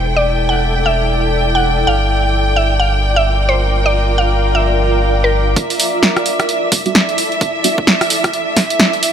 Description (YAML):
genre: UK garage, two-step garage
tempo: 130 BPM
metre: 4/4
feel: swing 60% on 16ths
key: E minor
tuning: A4 = 440 Hz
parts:
  - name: mallet-like synth pluck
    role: melody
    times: 0.0-5.5 s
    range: Bb4 to F#5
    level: -18 LUFS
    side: equal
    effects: chorus, digital delay
  - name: rich chamber violin section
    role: sustained chords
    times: 0.0-9.1 s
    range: E5 to G5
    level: -19 LUFS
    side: right 1 dB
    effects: sidechain pumping
  - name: saturated sub bass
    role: bass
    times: 0.0-5.5 s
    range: E1 to G1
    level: -16 LUFS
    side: equal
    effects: none
  - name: granular cloud pad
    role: texture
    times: 0.0-9.1 s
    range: E4 to D5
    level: -19 LUFS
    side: equal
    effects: built-in reverb, sidechain pumping
  - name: electronic kick drum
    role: drums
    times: 5.6-8.7 s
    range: none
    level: -20 LUFS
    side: equal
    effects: high-pass filter on kick
  - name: punchy analog drum machine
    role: drums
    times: 5.6-9.1 s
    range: hi-hat, rim click, snare drum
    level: -14 LUFS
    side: right 1 dB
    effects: none
  - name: deep mellow chord stab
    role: stabs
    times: 6.7-7.8 s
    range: G3 to F#4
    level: -22 LUFS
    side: right 2 dB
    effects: chorus, ping-pong delay
room: moderate lush hall reverb, RT60 2.0 s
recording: none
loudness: -12 LUFS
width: side -8 dB against mid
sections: 0.0-5.6 A section; 5.6-9.1 B section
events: build-up 5.6-9.1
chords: 0.0 Em7; 1.9 Gm7; 5.6 Em9